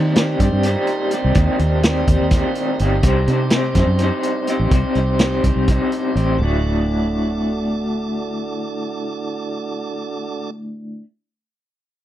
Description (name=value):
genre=psychedelic rock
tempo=250 BPM (eighths)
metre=7/8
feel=straight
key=D phrygian dominant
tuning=A4 = 439 Hz
part: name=tonewheel organ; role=sustained chords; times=0.0-10.5 s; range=A3 to D5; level=-28 LUFS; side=right 5 dB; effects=slow rotary speaker
part: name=electric guitar through a small old amp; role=riff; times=0.0-11.0 s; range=D2 to C5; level=-21 LUFS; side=left 1 dB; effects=tremolo
part: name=fingered electric bass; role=bass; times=0.0-11.0 s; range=D1 to Eb3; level=-19 LUFS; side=equal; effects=none
part: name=vintage drum kit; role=drums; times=0.2-6.3 s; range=hi-hat, kick drum, snare drum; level=-18 LUFS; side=equal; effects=none
room=little or no reverb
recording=dry, close 1970s-style studio recording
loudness=-16 LUFS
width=side -12 dB against mid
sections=0.0-6.4 A section; 6.4-9.7 B section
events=none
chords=0.0 Eb6; 3.0 Cmadd9; 6.4 D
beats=0.16 0.40 0.64 0.88 1.12 | 1.36 1.60 1.84 2.08 2.32 2.56 2.80 | 3.04 3.28 3.52 3.76 4.00 4.24 4.48 | 4.72 4.96 5.20 5.43 5.67 5.92 6.15 | 6.39 6.63 6.87 7.11 7.35 7.59 7.83 | 8.07 8.31 8.55 8.79 9.03 9.27 9.51